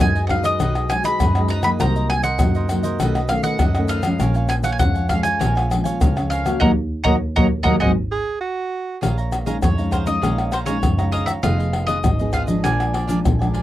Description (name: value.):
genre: samba and choro.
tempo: 100 BPM.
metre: 4/4.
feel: straight.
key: Bb minor from 9.0 s.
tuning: A4 = 440 Hz.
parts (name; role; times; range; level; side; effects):
bowl-back mandolin; melody; 0.0-13.5 s; C5 to Cb6; -24 LUFS; equal; none.
cavaquinho; accompaniment; 0.0-13.6 s; D4 to Bb5; -29 LUFS; right 6 dB; none.
nylon-string guitar; accompaniment; 0.0-13.6 s; F2 to Ab4; -24 LUFS; left 1 dB; none.
rich double bass; bass; 0.0-13.5 s; F1 to Gb2; -22 LUFS; equal; none.
tube shaker, surdo, pandeiro and tamborim; percussion; 0.0-13.6 s; none; -22 LUFS; left 1 dB; none.
breathy tenor saxophone; second line; 8.1-9.0 s; Gb4 to Ab4; -24 LUFS; right 5 dB; none.
room: little or no reverb.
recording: dry, close 1970s-style studio recording.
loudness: -17 LUFS.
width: side -14 dB against mid.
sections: 0.0-9.0 A section; 9.0-13.6 B section.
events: band accent 6.6-9.0.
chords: 0.0 Cb6; 1.8 Cm7b5; 3.0 Cb9; 4.2 Bbm7; 6.6 Ebm7; 7.8 Ab7; 9.0 Bbm7; 11.4 Fm7b5; 12.7 Bb7.